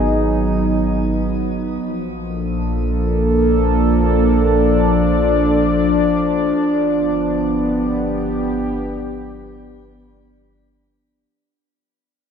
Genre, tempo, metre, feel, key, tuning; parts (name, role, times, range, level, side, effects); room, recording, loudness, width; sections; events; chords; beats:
ambient; free time; A4 = 440 Hz
warm analog pad; sustained chords; 0.0-11.3 s; F3 to Eb5; -16 LUFS; equal; chorus, shimmer reverb
warm sub bass; bass; 0.0-11.3 s; G1 to Bb1; -22 LUFS; equal
wet spring reverb, RT60 2.3 s; -15 LUFS; side -7 dB against mid
0.0-11.3 A section
fade-out 5.0-11.3
0.0 Abm7; 1.8 Bbmaj7; 6.6 G7
free time